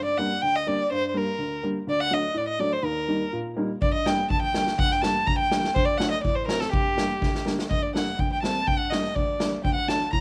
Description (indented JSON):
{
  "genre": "klezmer",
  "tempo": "124 BPM",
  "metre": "2/4",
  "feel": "straight",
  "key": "G harmonic minor",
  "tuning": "A4 = 440 Hz",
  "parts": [
    { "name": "rich violin", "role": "melody", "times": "0.0-10.2 s", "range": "G4 to Bb5", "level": "-28 LUFS", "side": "equal", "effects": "none" },
    { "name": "dark upright piano", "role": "accompaniment", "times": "0.0-10.2 s", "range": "D2 to Eb4", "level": "-31 LUFS", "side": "equal", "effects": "cassette tape" },
    { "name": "street-band drum kit", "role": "drums", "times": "3.8-10.2 s", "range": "kick drum, snare drum", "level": "-29 LUFS", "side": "equal", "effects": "cassette tape" }
  ],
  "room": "light reverb, small room ambience",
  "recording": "home recording on cassette",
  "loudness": "-25 LUFS",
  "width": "mono",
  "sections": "0.0-7.7 A section; 7.7-10.2 B section",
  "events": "drum fill 7.2-7.7",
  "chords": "0.0 Gm; 1.9 D; 2.8 Eb; 3.8 Gm; 5.8 D; 6.7 Gm; 9.6 D"
}